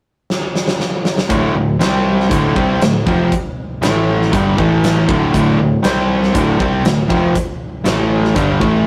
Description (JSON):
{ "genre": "classic rock", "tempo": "119 BPM", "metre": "4/4", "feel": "straight", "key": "D minor", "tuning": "A4 = 437 Hz", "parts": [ { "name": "huge arena drum kit", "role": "drums", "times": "0.3-8.7 s", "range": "hi-hat, kick drum, snare drum", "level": "-21 LUFS", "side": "equal", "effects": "none" }, { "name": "overdriven electric guitar", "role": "riff", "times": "1.3-8.9 s", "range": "D2 to C4", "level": "-17 LUFS", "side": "equal", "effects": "none" }, { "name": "tight distorted guitar", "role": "riff", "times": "1.3-8.9 s", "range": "D2 to C4", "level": "-22 LUFS", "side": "equal", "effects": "distortion" }, { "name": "picked electric bass", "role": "bass", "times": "1.3-8.9 s", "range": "D1 to C2", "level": "-24 LUFS", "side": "equal", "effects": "none" } ], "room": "moderate studio reverb, RT60 0.7 s", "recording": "rough rehearsal-room recording", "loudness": "-15 LUFS", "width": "mono", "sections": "0.0-1.3 A section; 1.3-8.9 B section", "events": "drum fill 0.3-1.3", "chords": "0.0 N.C.; 1.3 D5; 1.8 C5; 2.3 Dm; 3.8 A5; 4.3 G5; 4.6 A5; 5.1 D5; 5.8 C5; 6.3 Dm; 7.9 A5; 8.4 G5", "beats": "0.30 0.80 | 1.31 1.81 2.32 2.82 | 3.32 3.83 4.33 4.84 | 5.34 5.84 6.35 6.85 | 7.35 7.86 8.36 8.86" }